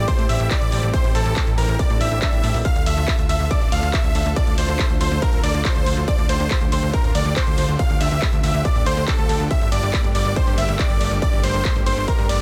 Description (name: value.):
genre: uplifting trance.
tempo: 140 BPM.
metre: 4/4.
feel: straight.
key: D minor.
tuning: A4 = 443 Hz.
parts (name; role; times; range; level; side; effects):
big supersaw lead; melody; 0.0-12.4 s; A4 to F5; -28 LUFS; equal; sidechain pumping, tape echo.
analog pluck; second line; 0.0-12.4 s; A4 to F5; -34 LUFS; equal; none.
lush unison pad; sustained chords; 0.0-12.4 s; D3 to A4; -33 LUFS; equal; chorus, sidechain pumping.
plucky analog bass; bass; 0.0-12.4 s; D1 to A2; -25 LUFS; equal; sidechain pumping.
electronic kick drum; drums; 0.1-12.2 s; none; -22 LUFS; equal; distortion.
techno drum kit; drums; 0.1-12.4 s; handclaps, hi-hat, ride cymbal; -32 LUFS; equal; none.
swell; sound effects; 1.9-2.6 s; none; -39 LUFS; equal; none.
room: digital ambience.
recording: none.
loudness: -19 LUFS.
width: mono.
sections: 0.0-12.4 A section.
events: swell 1.9-2.6.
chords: 0.0 Am7; 2.6 Dm; 9.5 Gmadd9.